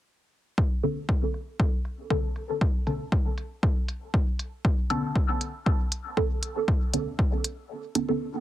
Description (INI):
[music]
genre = dub techno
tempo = 118 BPM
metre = 4/4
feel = swing 53% on 16ths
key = B minor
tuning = A4 = 441 Hz
[part]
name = electronic kick drum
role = drums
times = 0.6-7.3 s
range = none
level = -25 LUFS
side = equal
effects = none
[part]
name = filtered dub chord stab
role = stabs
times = 0.8-8.3 s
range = D3 to A4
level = -29 LUFS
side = right 1 dB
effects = phaser, vintage 12-bit sampler grit, sidechain pumping, dub echo
[part]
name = electronic hi-hat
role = drums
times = 0.8-8.1 s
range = none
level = -31 LUFS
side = right 1 dB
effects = low-pass filter on hats, low-pass filter on room
[sound]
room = digital ambience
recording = heavily compressed radio sound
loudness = -25 LUFS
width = side -13 dB against mid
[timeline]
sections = 0.6-8.4 A section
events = filter sweep on drum 0.6-8.4; kick drops out 7.7-8.4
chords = 0.6 Bm9